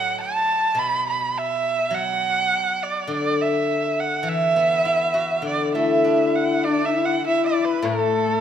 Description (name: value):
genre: chinese traditional, Chinese chamber ensemble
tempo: 102 BPM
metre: 4/4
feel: rubato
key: D gong mode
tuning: A4 = 442 Hz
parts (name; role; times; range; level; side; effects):
- clear erhu; melody; 0.0-8.4 s; A4 to B5; -22 LUFS; right 3 dB; none
- steel-string zither; accompaniment; 0.0-8.4 s; A2 to F#4; -24 LUFS; left 2 dB; none
- rich horsehead fiddle; second line; 5.7-8.4 s; A3 to E4; -22 LUFS; left 6 dB; none
room: moderate recital hall reverb, RT60 1.5 s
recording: minimal, uncompressed stereo recording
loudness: -19 LUFS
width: side -9 dB against mid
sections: 0.0-6.6 A section; 6.6-8.4 B section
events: none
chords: none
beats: 0.19 0.77 1.35 | 1.94 2.52 3.10 3.68 | 4.26 4.85 5.44 6.04 | 6.65 7.24 7.83